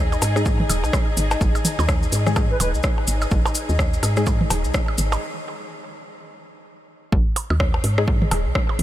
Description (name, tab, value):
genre	minimal techno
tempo	126 BPM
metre	4/4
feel	swing 59% on 16ths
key	G# minor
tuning	A4 = 440 Hz
part	woody FM bass	bass	0.0-8.8 s	D#1 to G#2	-22 LUFS	equal	sidechain pumping
part	dark studio string section	texture	0.0-5.2 s	D#4 to D#5	-30 LUFS	left 2 dB	sidechain pumping
part	cabasa	percussion	0.1-5.2 s	none	-31 LUFS	left 4 dB	none
part	electronic percussion blips and toms	percussion	0.1-8.8 s	none	-28 LUFS	right 1 dB	overdrive, tape echo
part	garage drum kit	drums	0.2-8.8 s	hi-hat, rim click	-28 LUFS	equal	none
part	filtered dub chord stab	stabs	0.4-4.2, 8.0 s	G#3 to G#4	-30 LUFS	left 3 dB	chorus, tape echo
part	electronic kick drum	drums	0.5-8.7 s	none	-21 LUFS	equal	none
part	mellow hollow silver concert flute	melody	2.5-2.7 s	B4	-31 LUFS	right 2 dB	tape echo
room	light reverb, digital ambience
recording	none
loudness	-18 LUFS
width	side -13 dB against mid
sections	0.0-7.1 A section; 7.1-8.8 B section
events	break 5.2-7.1; drop 7.1-8.8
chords	0.0 G#5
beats	0.46 0.93 | 1.41 1.89 2.36 2.84 | 3.31 3.79 4.27 4.74 | 5.22 5.70 6.17 6.65 | 7.12 7.60 8.08 8.55